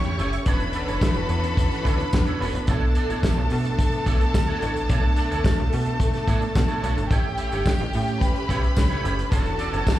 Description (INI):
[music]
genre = disco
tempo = 108 BPM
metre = 4/4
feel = straight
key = B minor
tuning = A4 = 444 Hz
[part]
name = warm studio violin section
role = second line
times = 0.0-10.0 s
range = G4 to C#6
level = -28 LUFS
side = equal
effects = slapback echo
[part]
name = electric guitar at the edge of break-up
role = accompaniment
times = 0.0-9.9 s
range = D4 to E5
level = -33 LUFS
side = right 5 dB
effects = ensemble chorus, slapback echo
[part]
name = clear studio string section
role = sustained chords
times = 0.0-10.0 s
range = E3 to A4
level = -30 LUFS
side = equal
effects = none
[part]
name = slap-like FM bass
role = bass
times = 0.0-9.8 s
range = E1 to B2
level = -24 LUFS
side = equal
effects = none
[part]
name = warm soul drum kit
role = drums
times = 0.0-10.0 s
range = hi-hat, kick drum, snare drum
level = -24 LUFS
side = equal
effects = none
[part]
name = tambourine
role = percussion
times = 1.0-10.0 s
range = none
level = -43 LUFS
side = left 3 dB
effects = none
[sound]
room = little or no reverb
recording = live gig heard through the venue's PA, club reverb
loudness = -20 LUFS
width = side -14 dB against mid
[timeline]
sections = 0.0-10.0 A section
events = none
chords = 0.5 E13sus4; 2.7 Bm9; 7.1 A7; 9.3 E13sus4